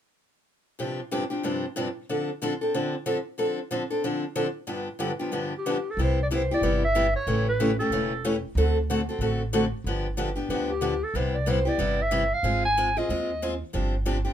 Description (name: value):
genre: acoustic string swing (jazz manouche)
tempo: 185 BPM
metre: 4/4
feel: swing 59% on 8ths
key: C major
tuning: A4 = 441 Hz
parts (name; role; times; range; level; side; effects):
- picked steel-string acoustic guitar; accompaniment; 0.8-14.3 s; G2 to A4; -27 LUFS; left 1 dB; none
- breathy clarinet; melody; 5.6-8.4, 10.7-13.6 s; G4 to Ab5; -26 LUFS; right 1 dB; none
- upright bass; bass; 6.0-14.3 s; E1 to Eb2; -28 LUFS; right 1 dB; none
room: moderate small room reverb, RT60 0.5 s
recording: minimal, uncompressed stereo recording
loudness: -24 LUFS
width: side -10 dB against mid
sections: 0.8-6.0 A section; 6.0-14.3 B section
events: none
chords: 0.8 G7sus4; 2.1 Dm7; 4.7 G7; 6.0 Cmaj9; 7.3 A7; 8.6 D7; 9.9 G7; 11.2 Cmaj7; 12.4 Ab6; 13.7 G7sus4